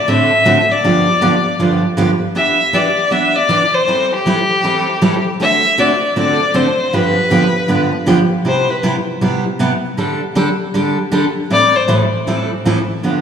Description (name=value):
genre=country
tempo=157 BPM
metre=4/4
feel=swing 64% on 8ths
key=C major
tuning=A4 = 440 Hz
part: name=clear fiddle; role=melody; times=0.0-8.8, 11.5-11.9 s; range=G4 to E5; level=-15 LUFS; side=left 2 dB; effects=slapback echo
part: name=picked steel-string acoustic guitar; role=accompaniment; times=0.1-13.2 s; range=G2 to A4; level=-15 LUFS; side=right 1 dB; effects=slapback echo
room=wet lush hall reverb, RT60 3.3 s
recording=live gig heard through the venue's PA, club reverb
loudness=-12 LUFS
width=side -7 dB against mid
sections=0.0-8.5 A section; 8.5-13.2 B section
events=fiddle solo 8.5-13.2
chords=0.0 D7/A; 0.8 G7; 2.4 Em7; 3.9 Am7/E; 5.4 D7; 6.9 G7; 8.5 Cmaj7; 10.0 Dsus4; 11.5 Am7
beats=0.08 0.46 | 0.84 1.22 1.60 1.98 | 2.36 2.74 3.12 3.50 | 3.88 4.26 4.64 5.03 | 5.41 5.79 6.17 6.55 | 6.93 7.31 7.69 8.07 | 8.46 8.84 9.22 9.60 | 9.98 10.36 10.75 11.13 | 11.51 11.89 12.27 12.66 | 13.04